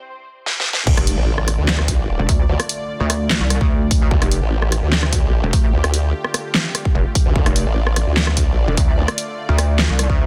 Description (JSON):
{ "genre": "heavy wobble dubstep", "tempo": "148 BPM", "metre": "4/4", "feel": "half-time", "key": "D minor", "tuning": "A4 = 440 Hz", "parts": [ { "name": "big-room dance drum kit", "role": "drums", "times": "0.5-10.1 s", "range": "crash cymbal, handclaps, hi-hat, rim click, snare drum", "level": "-23 LUFS", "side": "equal", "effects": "high-pass filter on hats, studio reverb, high-pass filter on snare, high-pass filter on cymbals" }, { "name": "lush unison pad", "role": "sustained chords", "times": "0.9-10.3 s", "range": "D3 to D5", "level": "-32 LUFS", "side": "equal", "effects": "chorus, sidechain pumping" }, { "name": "formant-sweep wobble bass", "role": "bass", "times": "0.9-9.1 s", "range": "A1 to D2", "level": "-20 LUFS", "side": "equal", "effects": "chorus, overdrive" }, { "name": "electronic kick drum", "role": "drums", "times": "0.9-10.2 s", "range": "none", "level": "-19 LUFS", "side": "equal", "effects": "studio reverb" }, { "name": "impact", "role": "sound effects", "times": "0.9-2.5 s", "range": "none", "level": "-29 LUFS", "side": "equal", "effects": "none" }, { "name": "pulsing pluck wobble bass", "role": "bass", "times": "1.0-10.3 s", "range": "E1 to D2", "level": "-20 LUFS", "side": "equal", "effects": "chorus, overdrive" } ], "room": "little or no reverb", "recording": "dense, heavily limited modern master, high-pass filter", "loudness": "-18 LUFS", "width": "mono", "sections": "0.9-10.3 A section", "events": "break 0.0-0.9; drum fill 0.5-0.9; drop 0.9-10.3; impact 0.9-2.5", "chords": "0.0 N.C.; 0.9 Dm" }